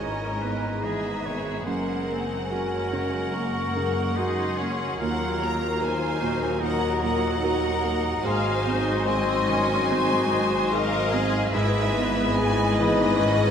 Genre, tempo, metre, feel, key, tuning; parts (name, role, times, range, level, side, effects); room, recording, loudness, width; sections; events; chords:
cinematic; 73 BPM; 4/4; rubato; Gb lydian; A4 = 440 Hz
rich symphonic violin section; melody; 0.0-13.5 s; D#5 to Bb5; -31 LUFS; equal
clear oboe; second line; 0.0-13.5 s; Bb4 to F5; -34 LUFS; right 3 dB
flute section; second line; 0.0-13.5 s; Ab5 to Db6; -32 LUFS; left 3 dB
mellow clarinet; second line; 0.0-13.5 s; Eb4 to Bb4; -33 LUFS; left 2 dB
rich symphonic violin section; second line; 0.0-13.5 s; G#4 to Eb5; -33 LUFS; left 2 dB
dark baby grand piano; accompaniment; 0.0-13.5 s; Eb2 to Bb4; -30 LUFS; right 4 dB
rich symphonic viola section; accompaniment; 0.0-13.5 s; Gb3 to F5; -32 LUFS; left 2 dB
mellow French horn section; sustained chords; 0.0-13.5 s; Gb3 to C5; -32 LUFS; left 2 dB
clear symphonic double bass section; bass; 0.0-13.5 s; Gb1 to Eb2; -32 LUFS; equal
rich symphonic cello section; bass; 0.0-13.5 s; Eb2 to G#2; -31 LUFS; equal
wet cathedral reverb, RT60 5.3 s; in a vast, echoing space; -22 LUFS; side -8 dB against mid
0.0-13.5 A section
0.0 Emaj7/G#; 1.7 Gbadd9; 5.0 Ebm; 8.2 Ab7; 11.5 Emaj7/G#